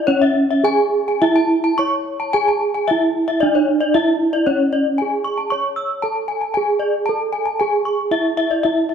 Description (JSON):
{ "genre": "gamelan", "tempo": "103-115 BPM", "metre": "4/4", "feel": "straight", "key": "C# pelog", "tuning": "A4 = 440 Hz", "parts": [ { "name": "gamelan-type bronze metallophone", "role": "melody", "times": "0.0-8.9 s", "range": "C#4 to C#5", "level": "-18 LUFS", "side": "right 3 dB", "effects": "none" }, { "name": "gamelan-type bronze metallophone", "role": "arpeggios", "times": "0.0-8.9 s", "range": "C#5 to E6", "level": "-20 LUFS", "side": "left 4 dB", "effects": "none" } ], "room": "wet recital hall reverb, RT60 1.7 s", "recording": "none", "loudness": "-16 LUFS", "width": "side -7 dB against mid", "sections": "0.0-4.5 A section; 4.5-8.9 B section", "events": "none", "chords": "none", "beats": "| 0.07 0.65 1.22 1.78 | 2.34 2.88 3.42 3.95 | 4.47 5.00 5.52 6.04 | 6.56 7.08 7.60 8.12 | 8.64" }